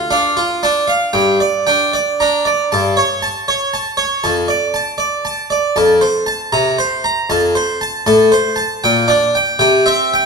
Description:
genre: classical, baroque-style suite movement for harpsichord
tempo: 78 BPM (dotted quarters)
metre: 6/8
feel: rubato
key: D minor, F major from 5.8 s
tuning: A4 = 440 Hz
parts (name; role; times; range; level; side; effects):
- harpsichord; solo; 0.0-10.3 s; F2 to Bb5; -12 LUFS; equal; none
room: wet recital hall reverb, RT60 1.7 s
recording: minimal, uncompressed stereo recording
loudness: -12 LUFS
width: side -4 dB against mid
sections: 0.0-10.3 A section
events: none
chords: 0.0 Dm; 1.1 Gm; 2.7 A7/G; 4.2 Dm/F; 5.8 F; 6.5 Bbsus2/C; 7.3 F; 8.0 Am; 8.8 Gm/Bb; 9.6 C

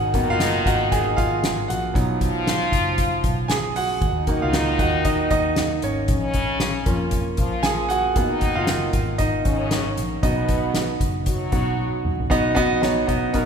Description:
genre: piano-driven pop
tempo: 116 BPM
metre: 4/4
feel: swing 56% on 16ths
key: unclear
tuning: A4 = 437 Hz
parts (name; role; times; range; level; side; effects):
- muted French horn section; second line; 0.0-12.0 s; B2 to F#4; -27 LUFS; left 2 dB; none
- bright concert grand piano; accompaniment; 0.0-13.5 s; F#3 to Ab5; -23 LUFS; right 2 dB; none
- vintage muted fingered electric bass; bass; 0.0-13.5 s; Gb1 to F2; -28 LUFS; equal; none
- soft-mallet drum kit; drums; 0.1-13.5 s; hi-hat, kick drum, snare drum, toms; -24 LUFS; equal; none
room: moderate church reverb, RT60 3.0 s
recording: recorded in a church or concert hall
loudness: -19 LUFS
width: side -7 dB against mid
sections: 0.0-12.3 A section; 12.3-13.5 B section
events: grand piano solo 0.0-12.3; drum fill 11.8-12.3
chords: 0.0 Abm7; 1.9 B; 4.0 Ebm; 6.1 Bbm; 8.2 Abm7; 10.2 B

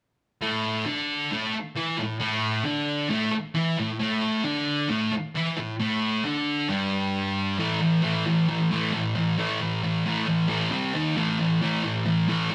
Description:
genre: rock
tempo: 134 BPM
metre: 4/4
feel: straight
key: unclear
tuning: A4 = 439 Hz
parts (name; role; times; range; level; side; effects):
- thick fuzz guitar; solo; 0.4-12.5 s; G2 to E4; -26 LUFS; equal; distortion
room: moderate large studio reverb, RT60 0.9 s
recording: band playing live in one room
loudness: -26 LUFS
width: mono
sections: 0.4-7.6 A section; 7.6-12.5 B section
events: none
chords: 0.4 A5; 10.7 C5; 10.9 D#5; 11.2 A5

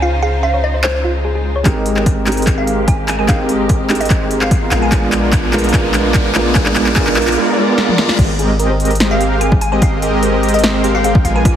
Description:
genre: future bass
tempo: 147 BPM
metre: 4/4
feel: half-time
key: Ab major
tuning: A4 = 439 Hz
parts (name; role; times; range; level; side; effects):
- glassy wavetable pluck; melody; 0.0-11.5 s; C5 to Ab5; -22 LUFS; equal; chorus, sidechain pumping, tape echo
- felt-muted upright piano; accompaniment; 0.0-8.2 s; Ab3 to C5; -20 LUFS; right 3 dB; sidechain pumping, tape echo
- clear studio string section; sustained chords; 0.0-7.3 s; Db3 to C5; -28 LUFS; left 1 dB; sidechain pumping, low-pass filter
- thumb-piano-like synth pluck; arpeggios; 0.0-1.6, 8.2-11.5 s; F4 to Db5; -24 LUFS; equal; chorus, sidechain pumping, tape echo
- long sustained 808-style bass; bass; 0.0-11.6 s; Ab1 to Db2; -20 LUFS; equal; sidechain pumping
- big-room dance drum kit; drums; 0.8-11.5 s; crash cymbal, handclaps, hi-hat, snare drum, toms; -19 LUFS; left 1 dB; none
- swell, riser and reverse cymbal; sound effects; 1.0-8.2 s; none; -27 LUFS; left 2 dB; none
- soft supersaw; riff; 1.7-11.6 s; Ab3 to Ab5; -17 LUFS; equal; sidechain pumping, low-pass filter
- electronic kick drum; drums; 1.7-11.5 s; none; -15 LUFS; equal; overdrive
room: moderate lush hall reverb, RT60 2.0 s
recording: heavily compressed radio sound, multiband compression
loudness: -12 LUFS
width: side -10 dB against mid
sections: 0.0-1.7 A section; 1.7-8.2 B section; 8.2-11.6 C section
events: swell 1.0-1.7; build-up 1.7-8.2; drum fill 1.7-7.4, 7.8-8.2; filter sweep on supersaw synth 1.7-8.2; riser 3.8-7.4; reverse cymbal 7.4-8.2; drop 8.2-11.6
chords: 0.0 Dbmaj9; 1.7 Abmaj9; 4.7 Bb7b9; 8.2 Abmaj9

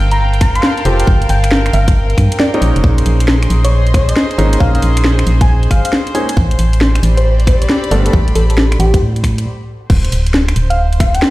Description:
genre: UK garage, two-step garage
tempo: 136 BPM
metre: 4/4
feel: swing 65% on 16ths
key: unclear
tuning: A4 = 440 Hz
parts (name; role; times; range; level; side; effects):
- warm studio violin section; sustained chords; 0.0-11.3 s; C5 to G5; -27 LUFS; equal; sidechain pumping
- organ-like FM bass; bass; 0.0-11.2 s; D1 to A2; -12 LUFS; equal; none
- warm studio string section; texture; 0.0-9.5 s; C4 to C6; -23 LUFS; equal; sidechain pumping
- soft struck synth lead; melody; 0.1-11.2 s; G4 to C6; -21 LUFS; left 1 dB; chorus, dub echo
- garage drum kit; drums; 0.1-11.3 s; crash cymbal, finger snaps, hi-hat, snare drum; -17 LUFS; equal; overdrive
- electronic kick drum; drums; 0.4-11.1 s; none; -12 LUFS; equal; overdrive
- warm grand piano; stabs; 0.9-8.1 s; G3 to C5; -20 LUFS; equal; dub echo
room: light reverb, studio ambience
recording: played on a big sound system in a bare room, stone room reverb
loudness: -10 LUFS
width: side -18 dB against mid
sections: 0.0-9.9 A section; 9.9-11.3 B section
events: stop 9.5-9.9; drop 9.9-11.3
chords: 0.0 Gm11; 2.6 Bbm11; 6.4 Am11; 9.9 Dm7

